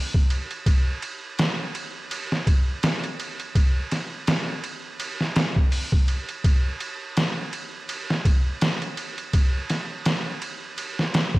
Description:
trip hop; 83 BPM; 4/4; swing 56% on 16ths
trip hop sampler-style drum kit; drums; 0.1-11.4 s; hi-hat, kick drum, ride cymbal, snare drum; -22 LUFS; equal; vintage 12-bit sampler grit
digital ambience; vinyl crackle; -22 LUFS; side -20 dB against mid
0.0-11.4 A section

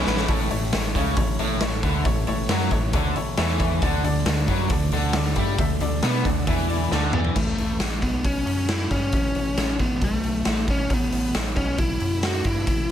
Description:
classic rock; 136 BPM; 4/4; straight; A mixolydian; A4 = 442 Hz
biting lead guitar; melody; 0.0, 7.1-12.9 s; A3 to F#4; -26 LUFS; left 1 dB; overdrive, digital delay
bright upright piano; accompaniment; 0.0-7.3 s; C#4 to A5; -31 LUFS; left 2 dB
cranked stack guitar; riff; 0.0-7.4 s; A2 to E4; -28 LUFS; left 11 dB; overdrive, spring reverb
raw garage guitar; riff; 0.0-7.4 s; A2 to E4; -28 LUFS; right 12 dB; overdrive, phaser
gritty driven synth bass; bass; 0.0-12.9 s; A1 to B2; -27 LUFS; equal
raw garage drum kit; drums; 0.1-12.8 s; crash cymbal, hi-hat, kick drum, snare drum, toms; -25 LUFS; equal
small room reverb; -20 LUFS; side -10 dB against mid
0.3-7.4 A section; 7.4-12.9 B section
drum fill 0.0, 6.9-7.4; upright piano fill 0.0
0.3 A; 3.8 D5; 7.4 A

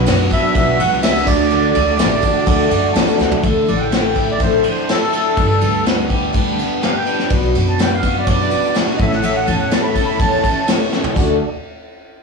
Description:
folk rock and heartland rock; 124 BPM; 4/4; straight; D major; A4 = 440 Hz
picked twelve-string acoustic guitar; accompaniment; 0.0-11.4 s; A2 to D5; -22 LUFS; left 5 dB; wide subtle chorus
reed electric piano; accompaniment; 0.0-3.4, 7.3-11.4 s; D4 to A5; -27 LUFS; right 7 dB
mellow tonewheel organ; sustained chords; 0.0-3.4, 7.3-11.5 s; C#4 to D5; -27 LUFS; right 2 dB
crunchy overdriven guitar; riff; 0.0-11.4 s; G2 to A4; -22 LUFS; equal
upright bass; bass; 0.0-11.4 s; G1 to F#2; -20 LUFS; equal
soft brush drum kit; drums; 0.1-11.3 s; crash cymbal, kick drum, ride cymbal, snare drum, toms; -19 LUFS; equal; soft clipping on snare
tambourine; percussion; 0.1-3.3, 7.4-11.4 s; -36 LUFS; right 7 dB
accordion; melody; 0.3-10.7 s; A4 to B5; -20 LUFS; right 2 dB; light tremolo tuning, plate reverb, analog delay
light reverb; blown-out, overdriven recording, overdrive, studio reverb; -13 LUFS; side -4 dB against mid
0.0-3.4 A section; 3.4-11.2 B section; 11.2-12.2 C section
reed electric piano fill 2.5-3.4; drum fill 3.2, 10.9; accordion solo 3.4-11.2
0.0 Bm; 1.3 D; 3.4 Dsus2; 5.4 G; 7.3 Bm; 9.0 A; 11.2 D

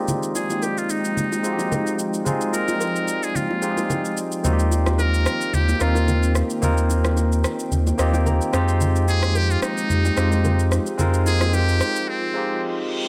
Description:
amapiano; 110 BPM; 4/4; swing 55% on 16ths; A4 = 440 Hz
barky tine electric piano; accompaniment; 0.0-13.1 s; Ab3 to C6; -27 LUFS; equal; low-pass filter
ethereal airy pad; sustained chords; 0.0-13.1 s; Eb3 to G5; -32 LUFS; equal; ensemble chorus, built-in reverb, low-pass filter
electronic shaker and rim click; drums; 0.1-12.1 s; -32 LUFS; equal
congas and bongos; percussion; 0.1-11.7 s; -31 LUFS; equal
trumpet with metal mute; melody; 0.4-12.6 s; C4 to Bb4; -28 LUFS; equal; low-pass filter, tape echo
saturated sub bass; bass; 4.4-11.8 s; Eb2 to F2; -22 LUFS; equal
reverse cymbal; sound effects; 12.5-13.1 s; -34 LUFS; equal
light reverb; -21 LUFS; mono
0.0-13.1 A section
filter sweep 0.0-13.1; tine electric piano fill 7.7-8.8; break 12.1-13.1; reverse cymbal 12.5-13.1
0.0 Fm9; 4.4 Eb6; 8.5 Fm9

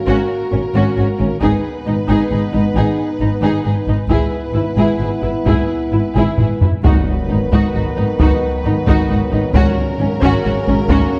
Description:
cinematic, epic orchestral film score; 133 BPM; 3/4; straight; A4 = 439 Hz
warm symphonic violin section; melody; 0.0-11.2 s; A#4 to B4; -30 LUFS; equal
mellow French horn section; sustained chords; 0.0-11.2 s; A#3 to B4; -26 LUFS; equal
warm symphonic violin section; second line; 0.1-11.1 s; C#4 to G#4; -28 LUFS; equal
warm symphonic viola section; accompaniment; 0.1-11.1 s; C#4 to E4; -24 LUFS; equal
dark symphonic double bass section; bass; 0.1-11.0 s; G#1; -22 LUFS; equal
warm symphonic cello section; bass; 0.1-11.0 s; G#2; -23 LUFS; equal
taiko ensemble; drums; 1.4-11.2 s; -20 LUFS; equal
clear trombone section; sustained chords; 6.8-11.2 s; C#3 to F#3; -28 LUFS; equal
timpani; percussion; 6.8-7.5, 9.6-10.2 s; G#2; -28 LUFS; equal
impact; sound effects; 7.0-8.2 s; -30 LUFS; equal
moderate concert hall reverb, RT60 2.4 s; dark, warm production; -16 LUFS; mono
0.0-6.8 A section; 6.8-11.2 A section
drum fill 6.2-6.8; impact 6.8-8.2
0.0 F#/G#; 1.4 G#m; 4.1 E/G#; 6.8 B/G#; 9.6 F#/G#

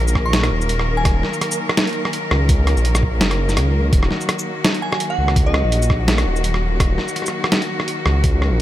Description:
half-time drum and bass; 167 BPM; 4/4; swing 56% on 16ths, half-time; Eb minor; A4 = 440 Hz
rich symphonic cello section; sustained chords; 0.0-8.6 s; Eb3 to Bb4; -24 LUFS; left 1 dB; sidechain pumping
dark detuned saw bass; bass; 0.0-8.6 s; Eb1 to Db2; -18 LUFS; equal
boom bap sampler-style drum kit; drums; 0.1-8.5 s; hi-hat, rim click, shaker, snare drum; -21 LUFS; equal
electronic kick drum; drums; 0.2-8.3 s; -18 LUFS; equal
glassy synth bell; melody; 0.3-1.2, 4.8-6.0 s; Eb5 to Db6; -28 LUFS; right 1 dB; chorus, tape echo
digital ambience; -16 LUFS; side -13 dB against mid
0.0-8.6 A section
0.0 Ebm

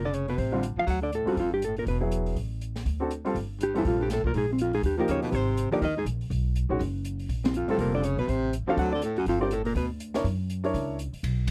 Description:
jazz, small-group swing and bop; 244 BPM; 4/4; swing 59% on 8ths; A4 = 440 Hz
hollow-body jazz guitar; melody; 0.0-9.8 s; C4 to F#5; -31 LUFS; equal
breathy baritone saxophone; second line; 0.0-9.9 s; C2 to F#3; -34 LUFS; equal
upright bass; bass; 0.0-11.5 s; E1 to F#2; -32 LUFS; equal
open jazz drum kit; drums; 0.1-11.5 s; hi-hat, kick drum, ride cymbal, snare drum; -40 LUFS; equal
warm upright piano; accompaniment; 0.5-11.0 s; D3 to D5; -32 LUFS; equal
little or no reverb; dry, close 1970s-style studio recording; -28 LUFS; mono
0.0-3.4 A section; 3.4-11.2 A section
0.4 F69/A; 0.9 D5; 1.4 Gm9; 1.9 E; 2.4 N.C.; 2.9 D7; 3.4 Gm9; 4.3 Fmadd11/Bb; 4.8 Eb; 5.3 Abadd9; 6.3 B5; 7.3 Bb5; 8.3 D7#9/A; 8.8 D7; 9.3 Gm7; 10.2 F#7b13

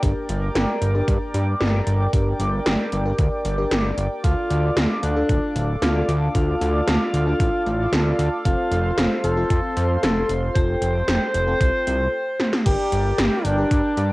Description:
synthwave; 114 BPM; 4/4; straight; G minor; A4 = 442 Hz
chorused pulse-width pad; sustained chords; 0.0-14.1 s; A4 to D6; -28 LUFS; equal; sidechain pumping, cassette tape
FM electric piano with soft pad layer; stabs; 0.0-14.1 s; C4 to Bb4; -30 LUFS; left 2 dB; chorus, phaser, cassette tape
fat analog bass; bass; 0.0-14.1 s; D1 to G2; -22 LUFS; equal; tube saturation
80s electronic pad drums; drums; 0.0-14.1 s; crash cymbal, hi-hat, snare drum; -23 LUFS; equal; overdrive, cassette tape
electronic kick drum; drums; 0.0-13.8 s; -22 LUFS; equal; overdrive, cassette tape
breathy alto saxophone; melody; 4.2-14.1 s; D4 to C5; -24 LUFS; equal; cassette tape, tape echo
light reverb; home recording on cassette; -18 LUFS; side -20 dB against mid
0.0-12.7 A section; 12.7-14.1 B section
break 12.1-12.7; drum fill 12.4
0.0 Gm; 4.2 Dm; 8.4 F; 12.7 Gm

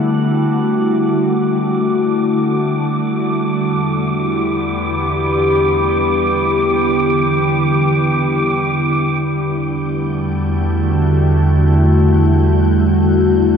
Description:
ambient; free time; E minor; A4 = 440 Hz
glassy FM pad; sustained chords; 0.0-13.6 s; E2 to G4; -14 LUFS; equal; ensemble chorus, built-in reverb
wind-like tuned noise texture; texture; 0.1-13.6 s; D6 to G6; -23 LUFS; right 2 dB; built-in reverb
deep rumbling drone; bass; 10.2-13.6 s; E2; -16 LUFS; equal; built-in reverb
wet huge ambient reverb, RT60 8.8 s; in a vast, echoing space, cassette tape; -13 LUFS; side -7 dB against mid
0.0-9.2 A section; 9.2-13.6 B section
fade-in on synth texture 0.0-9.2, 9.2-13.6
0.0 Em11; 3.6 G6/E; 9.2 Em11

